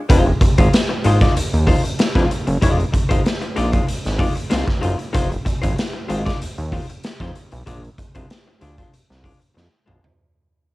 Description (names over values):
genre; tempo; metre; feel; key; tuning
funk; 95 BPM; 4/4; straight; F dorian; A4 = 440 Hz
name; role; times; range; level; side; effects
archtop guitar, miked and amplified; accompaniment; 0.1-10.1 s; Ab3 to D5; -24 LUFS; left 3 dB; cassette tape
fat analog bass; bass; 0.1-10.0 s; F1 to F2; -20 LUFS; equal; none
raw garage drum kit; drums; 0.1-10.2 s; hi-hat, kick drum, snare drum, toms; -18 LUFS; equal; none
room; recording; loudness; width
light reverb; home recording on cassette; -16 LUFS; side -19 dB against mid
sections
0.1-10.2 A section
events
fade-out 0.1-10.2; drum fill 9.6-10.2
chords
0.1 Fm7; 7.7 Bb9